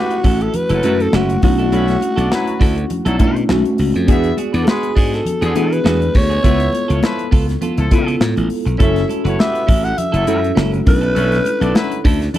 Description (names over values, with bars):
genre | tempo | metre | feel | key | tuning
polished 1980s jazz-funk pop | 102 BPM | 4/4 | swing 54% on 16ths | unclear | A4 = 440 Hz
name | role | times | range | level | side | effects
growling alto saxophone | melody | 0.0-12.0 s | F#4 to F#5 | -20 LUFS | equal | none
clear horn section | second line | 0.0-12.0 s | D3 to E5 | -25 LUFS | left 3 dB | none
mellow tine electric piano | accompaniment | 0.0-12.4 s | A3 to A4 | -20 LUFS | left 1 dB | medium stereo tremolo, wide subtle chorus
clean electric guitar | riff | 0.1-12.4 s | B3 to B4 | -26 LUFS | right 6 dB | lush chorus
modern studio drum kit | drums | 0.1-12.4 s | hi-hat, kick drum, snare drum | -15 LUFS | equal | none
glassy slap bass | bass | 0.2-12.3 s | F#1 to E3 | -18 LUFS | equal | none
congas | percussion | 0.5-12.4 s | none | -27 LUFS | left 3 dB | none
room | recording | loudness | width
studio reverb | dry, close 1970s-style studio recording | -13 LUFS | side -13 dB against mid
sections
0.0-12.4 A section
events
none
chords
0.0 F#m7; 1.4 Bm11; 3.5 B9; 4.1 E9; 6.4 C#7alt; 8.8 F#m7; 10.9 Bm11